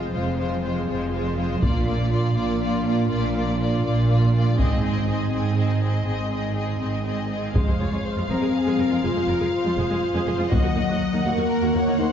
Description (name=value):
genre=cinematic, epic orchestral film score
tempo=81 BPM (dotted quarters)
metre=6/8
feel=straight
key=F phrygian from 7.5 s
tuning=A4 = 439 Hz
part: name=rich studio violin section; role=melody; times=0.0-12.1 s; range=C5 to Gb5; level=-32 LUFS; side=left 3 dB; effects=none
part: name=warm symphonic violin section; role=second line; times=0.0-12.1 s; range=F4 to Gb5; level=-32 LUFS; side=left 2 dB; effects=none
part: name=rich symphonic viola section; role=accompaniment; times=0.0-12.0 s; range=Ab3 to Ab4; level=-31 LUFS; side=right 1 dB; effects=none
part: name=clear French horn section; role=sustained chords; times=0.0-12.1 s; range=Gb3 to Ab4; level=-26 LUFS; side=left 2 dB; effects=none
part: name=rich symphonic cello section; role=bass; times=0.0-12.0 s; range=Eb2 to Bb2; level=-27 LUFS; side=right 2 dB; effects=none
part: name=rich symphonic double bass section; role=bass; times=0.0-12.0 s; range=F1 to Eb2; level=-26 LUFS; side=right 2 dB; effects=none
part: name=taiko ensemble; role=drums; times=1.6-11.5 s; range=none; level=-24 LUFS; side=equal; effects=none
room=wet scoring stage reverb, RT60 1.7 s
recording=heard from further back in the room, nothing above 7.6 kHz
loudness=-20 LUFS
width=side -8 dB against mid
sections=0.0-7.5 A section; 7.5-12.1 B section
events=build-up 0.0-7.5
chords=0.0 Fm; 1.6 Bb; 4.6 Ab; 7.5 Fm; 10.5 Ebm